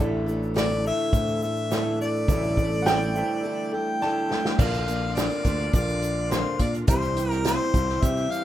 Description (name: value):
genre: folk rock and heartland rock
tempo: 104 BPM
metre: 4/4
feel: straight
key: unclear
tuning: A4 = 440 Hz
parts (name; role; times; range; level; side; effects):
- dark grand piano; accompaniment; 0.0-8.4 s; E4 to D5; -36 LUFS; equal; none
- picked steel-string acoustic guitar; accompaniment; 0.0-8.4 s; A2 to A4; -34 LUFS; left 3 dB; none
- bright tonewheel organ; sustained chords; 0.0-8.4 s; E3 to G5; -38 LUFS; equal; slow rotary speaker
- electric guitar through a small old amp; riff; 0.0-8.4 s; A2 to A4; -30 LUFS; right 3 dB; none
- picked electric bass; bass; 0.0-8.3 s; A1 to C3; -28 LUFS; equal; none
- egg shaker; percussion; 0.3-8.4 s; none; -44 LUFS; right 4 dB; none
- warm harmonica; melody; 0.6-8.4 s; C5 to G5; -28 LUFS; left 2 dB; none
- unplugged drum kit; drums; 0.6-8.4 s; crash cymbal, hi-hat, kick drum, snare drum; -25 LUFS; equal; none
- bright upright piano; second line; 2.8-4.4 s; F#5 to A5; -29 LUFS; right 2 dB; tape echo
room: moderate small room ambience, RT60 0.5 s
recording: rough home demo mix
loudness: -22 LUFS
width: side -12 dB against mid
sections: 0.0-4.6 A section; 4.6-8.4 B section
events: break 3.4-4.6; drum fill 4.0-4.6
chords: 0.0 Asus4; 4.6 Bb; 6.9 C